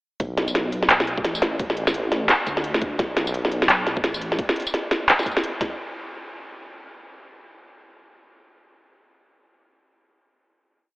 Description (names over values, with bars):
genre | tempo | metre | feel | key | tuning
half-time drum and bass | 172 BPM | 4/4 | swing 59% on 16ths, half-time | B minor | A4 = 441 Hz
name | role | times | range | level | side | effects
dark detuned saw bass | bass | 0.2-4.4 s | A1 to D2 | -29 LUFS | equal | none
electronic kick drum | drums | 0.2-5.7 s | none | -28 LUFS | equal | overdrive
organic electronic drum kit | drums | 0.2-5.7 s | handclaps, hi-hat, snare drum, tambourine | -21 LUFS | equal | overdrive
room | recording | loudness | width
moderate huge ambient reverb, RT60 7.7 s | telephone sound | -20 LUFS | side -22 dB against mid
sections
0.2-5.8 drop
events
drop 0.2-5.8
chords
none